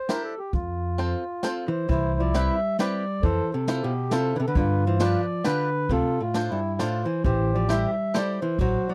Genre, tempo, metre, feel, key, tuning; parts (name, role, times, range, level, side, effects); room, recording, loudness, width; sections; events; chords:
musette waltz; 135 BPM; 3/4; swing 54% on 8ths, rubato; C major; A4 = 442 Hz
mellow accordion; melody; 0.0-8.9 s; E4 to E5; -30 LUFS; equal
bluegrass banjo; accompaniment; 0.1-8.4 s; C4 to C5; -32 LUFS; equal
jazz brush drum kit; drums; 0.1-8.7 s; hi-hat, kick drum, ride cymbal, snare drum; -30 LUFS; equal
upright bass; bass; 0.5-8.7 s; A1 to G2; -28 LUFS; equal
archtop guitar, miked and amplified; second line; 1.7-8.9 s; G2 to G3; -30 LUFS; equal
little or no reverb; dry, close 1970s-style studio recording; -25 LUFS; mono
0.0-1.9 A section; 1.9-8.9 B section
0.0 Cadd9; 0.5 F; 1.9 Cmaj7; 3.2 Fmaj7; 4.6 G7; 5.9 Dm7; 7.2 Am7